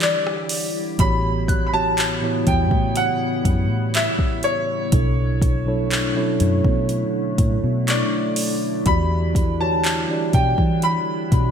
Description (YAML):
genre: contemporary R&B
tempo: 61 BPM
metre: 4/4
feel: straight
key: unclear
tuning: A4 = 441 Hz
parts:
  - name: warm concert grand piano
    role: melody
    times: 0.0-11.5 s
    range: C#5 to B5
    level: -24 LUFS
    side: left 1 dB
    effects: wide subtle chorus, ping-pong delay
  - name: mellow tine electric piano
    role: accompaniment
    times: 0.0-11.5 s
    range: A2 to D5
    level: -25 LUFS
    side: right 3 dB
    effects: slow stereo tremolo
  - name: glassy FM pad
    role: sustained chords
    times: 0.0-11.5 s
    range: C#3 to G4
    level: -27 LUFS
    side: left 3 dB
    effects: ensemble chorus, built-in reverb
  - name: vintage muted fingered electric bass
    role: bass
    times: 0.0-11.5 s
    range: A1 to E3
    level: -22 LUFS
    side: equal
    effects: none
  - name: smooth R&B drum kit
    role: drums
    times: 0.0-11.5 s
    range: handclaps, hi-hat, kick drum, rim click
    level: -22 LUFS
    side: equal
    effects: gated reverb
  - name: mallet-like synth pluck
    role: texture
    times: 0.0-9.3 s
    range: C#6 to B6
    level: -36 LUFS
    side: left 2 dB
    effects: none
room: light reverb, digital ambience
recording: bright 1980s-style digital production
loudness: -18 LUFS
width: side -7 dB against mid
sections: 1.0-11.5 A section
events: none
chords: 0.0 Em9; 1.0 A13; 4.9 Bm11; 8.9 Em9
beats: 0.01 | 0.99 1.97 2.96 3.94 | 4.92 5.91 6.89 7.88 | 8.86 9.84 10.83